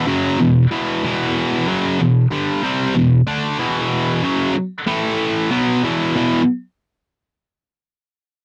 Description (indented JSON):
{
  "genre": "metal",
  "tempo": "94 BPM",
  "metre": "4/4",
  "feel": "straight",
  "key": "E minor",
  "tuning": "A4 = 440 Hz",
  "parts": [
    { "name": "high-gain distorted guitar", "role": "solo", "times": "0.0-6.4 s", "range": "E2 to D4", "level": "-18 LUFS", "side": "equal", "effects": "distortion" }
  ],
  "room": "little or no reverb",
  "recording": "dry, close 1970s-style studio recording",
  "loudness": "-18 LUFS",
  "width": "mono",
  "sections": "0.0-6.1 A section; 6.1-8.4 B section",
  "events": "none",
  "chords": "0.0 Em; 4.9 A5; 5.5 E5",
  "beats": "0.39 | 1.03 1.67 2.31 2.94 | 3.58 4.22 4.86 5.50 | 6.14"
}